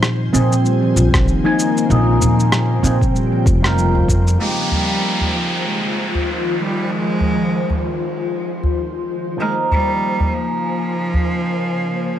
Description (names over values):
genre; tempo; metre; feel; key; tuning
organic downtempo; 96 BPM; 4/4; swing 57% on 16ths; F minor; A4 = 440 Hz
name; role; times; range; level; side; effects
ethereal airy pad; sustained chords; 0.0-12.2 s; Db3 to Ab5; -24 LUFS; left 3 dB; ensemble chorus, built-in reverb, phaser, sidechain pumping
upright bass; bass; 0.0-4.3 s; F1 to Bb2; -16 LUFS; equal; sidechain pumping
electronic rim click and cabasa; drums; 0.0-4.4 s; none; -21 LUFS; equal; low-pass filter on perc, low-pass filter on snare
electric guitar with an envelope filter; accompaniment; 0.3-12.2 s; F3 to Ab5; -24 LUFS; right 2 dB; sidechain pumping, tape echo
handpan; arpeggios; 0.3-4.1 s; Eb3 to F4; -21 LUFS; equal; tape echo
electronic kick drum; drums; 1.1-4.2 s; none; -18 LUFS; equal; none
udu; percussion; 2.2-11.2 s; none; -21 LUFS; equal; none
clear cello; melody; 4.4-12.2 s; F3 to Ab3; -23 LUFS; right 1 dB; tape echo
downlifter; sound effects; 4.4-9.4 s; none; -24 LUFS; equal; none
room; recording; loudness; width
small room ambience; dry, gritty hardware recording; -15 LUFS; side -11 dB against mid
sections
0.0-4.4 A section; 4.4-12.2 B section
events
filter sweep on clean electric guitar 0.0-4.4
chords
0.0 Bbm9; 4.4 Fm7; 9.4 Bbm9